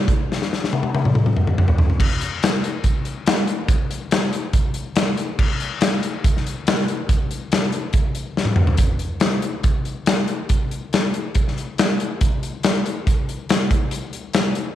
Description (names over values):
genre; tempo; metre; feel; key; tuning
rock; 141 BPM; 4/4; straight; none; none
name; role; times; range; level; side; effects
big rock drum kit; drums; 0.1-14.7 s; crash cymbal, hi-hat, kick drum, snare drum, toms; -18 LUFS; equal; none
room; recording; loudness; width
moderate echo chamber reverb, RT60 1.4 s; 1960s-style stereo; -18 LUFS; side -12 dB against mid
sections
0.0-2.0 A section; 2.0-8.8 B section; 8.8-14.8 C section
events
drum fill 0.3-2.0, 8.4-8.8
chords
none